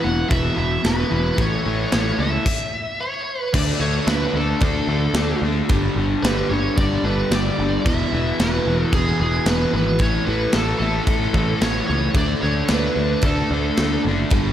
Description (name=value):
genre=hard rock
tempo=111 BPM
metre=4/4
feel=straight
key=unclear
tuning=A4 = 438 Hz
part: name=high-gain lead guitar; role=melody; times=0.0-14.0 s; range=G#4 to F#5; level=-25 LUFS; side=right 1 dB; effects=distortion, slapback echo
part: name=overdriven semi-hollow guitar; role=riff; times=0.0-14.5 s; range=E2 to D4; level=-22 LUFS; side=left 1 dB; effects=slapback echo
part: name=picked electric bass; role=bass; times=0.0-14.5 s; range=E1 to D2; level=-23 LUFS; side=equal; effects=none
part: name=tight metal drum kit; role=drums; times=0.3-14.4 s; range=crash cymbal, kick drum, snare drum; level=-23 LUFS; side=equal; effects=none
room=moderate lush hall reverb, RT60 2.4 s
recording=big arena sound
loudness=-18 LUFS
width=side -10 dB against mid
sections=0.0-3.5 A section; 3.5-14.5 A section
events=stop 2.5-3.5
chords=0.0 E5; 1.4 A; 3.5 D5; 5.7 G5; 7.9 E; 10.0 A; 12.2 D5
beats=0.31 0.85 | 1.39 1.93 2.46 3.00 | 3.54 4.08 4.62 5.16 | 5.70 6.24 6.77 7.31 | 7.85 8.39 8.93 9.47 | 10.01 10.55 11.09 11.63 | 12.16 12.70 13.24 13.78 | 14.32